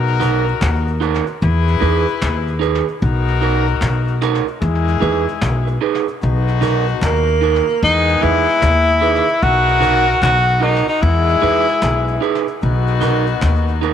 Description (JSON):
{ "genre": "roots reggae", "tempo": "75 BPM", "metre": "4/4", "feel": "swing 65% on 16ths", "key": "B major", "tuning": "A4 = 440 Hz", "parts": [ { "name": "warm horn section", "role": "second line", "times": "0.0-13.8 s", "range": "B2 to B4", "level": "-22 LUFS", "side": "left 10 dB", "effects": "tape echo" }, { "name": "upright bass", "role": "bass", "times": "0.0-13.9 s", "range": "B1 to E2", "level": "-17 LUFS", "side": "left 1 dB", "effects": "none" }, { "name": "cajon", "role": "drums", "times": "0.1-13.9 s", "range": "none", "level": "-28 LUFS", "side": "left 1 dB", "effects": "tape echo" }, { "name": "electric guitar through a small old amp", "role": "accompaniment", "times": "0.2-13.9 s", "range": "D#4 to B4", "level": "-21 LUFS", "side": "right 11 dB", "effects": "spring reverb, tape echo" }, { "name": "warm tenor saxophone", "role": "melody", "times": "7.1-12.2 s", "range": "A#3 to F#4", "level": "-15 LUFS", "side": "left 1 dB", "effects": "tape echo" } ], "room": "light reverb, small room ambience", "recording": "1960s-style stereo with parts hard left and right", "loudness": "-14 LUFS", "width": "side -9 dB against mid", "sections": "0.0-13.9 A section", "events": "none", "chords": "0.0 Bmaj7; 1.4 Emaj7; 3.0 Bmaj7; 4.6 Emaj7; 6.2 Bmaj7; 7.8 Emaj7; 9.4 Bmaj7; 11.0 Emaj7; 12.6 Bmaj7", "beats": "0.61 1.41 2.21 | 3.01 3.81 4.61 5.41 | 6.21 7.01 7.82 8.62 | 9.42 10.22 11.02 11.82 | 12.62 13.42" }